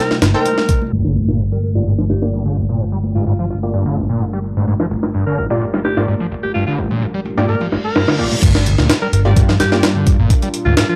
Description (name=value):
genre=breakbeat, breaks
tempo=128 BPM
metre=4/4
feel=straight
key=G phrygian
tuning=A4 = 436 Hz
part: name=growling alto saxophone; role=melody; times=0.0-11.0 s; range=F4 to Bb4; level=-25 LUFS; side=equal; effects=small speaker sound, analog delay
part: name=warbly tape-like pad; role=sustained chords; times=0.0-11.0 s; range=C3 to Bb4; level=-32 LUFS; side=equal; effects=none
part: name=orchestra-hit-like synth stab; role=stabs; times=0.0-9.8 s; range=Bb3 to G5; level=-25 LUFS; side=equal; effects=built-in reverb, analog delay
part: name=breakbeat sampler-style drum kit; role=drums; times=0.1-10.9 s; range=crash cymbal, hi-hat, kick drum, snare drum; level=-18 LUFS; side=equal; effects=low-pass filter on kick, low-pass filter on hats, low-pass filter on snare, low-pass filter on cymbals
part: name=congas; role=percussion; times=0.1-8.4 s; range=none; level=-28 LUFS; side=equal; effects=none
part: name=picked electric bass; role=bass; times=0.2-10.8 s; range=G1 to G2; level=-21 LUFS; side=equal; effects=low-pass filter
part: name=screaming distorted acid line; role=riff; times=0.9-11.0 s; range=G1 to G3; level=-22 LUFS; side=equal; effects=distortion, analog chorus, analog delay
part: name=impact and reverse cymbal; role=sound effects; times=0.9-2.8, 7.7-8.4 s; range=none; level=-29 LUFS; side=equal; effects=none
room=light reverb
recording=dry, gritty hardware recording, low-pass filter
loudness=-16 LUFS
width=mono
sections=0.9-8.4 A section; 8.4-11.0 B section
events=impact 0.9-2.8; filter sweep on acid bass 0.9-8.4; filter sweep on synth stab 0.9-8.4; filter sweep 0.9-8.4; reverse cymbal 7.7-8.4; drop 8.4-11.0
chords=0.0 Cm7; 0.9 Gm7